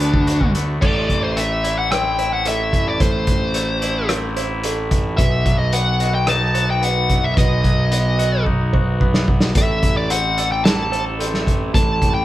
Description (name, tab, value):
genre	post-rock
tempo	110 BPM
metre	4/4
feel	straight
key	unclear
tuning	A4 = 440 Hz
part	fuzz lead guitar	melody	0.0-12.2 s	D4 to A5	-20 LUFS	left 1 dB	distortion
part	warm chamber string section	sustained chords	0.0-12.2 s	C3 to A5	-32 LUFS	left 2 dB	none
part	felt-muted upright piano	arpeggios	0.0-12.2 s	A4 to D#5	-30 LUFS	right 6 dB	none
part	twangy electric guitar	arpeggios	0.0-12.2 s	A2 to A4	-28 LUFS	left 2 dB	none
part	fuzz picked electric bass	bass	0.0-12.2 s	A1 to D2	-21 LUFS	equal	overdrive
part	loose indie drum kit	drums	0.0-12.1 s	crash cymbal, hi-hat, kick drum, rim click, snare drum	-19 LUFS	equal	none
room	light reverb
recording	band playing live in one room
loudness	-16 LUFS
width	side -14 dB against mid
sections	0.8-12.2 A section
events	drum fill 8.5-9.6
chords	0.0 Bm7/D; 0.8 Am; 5.2 B; 9.6 Am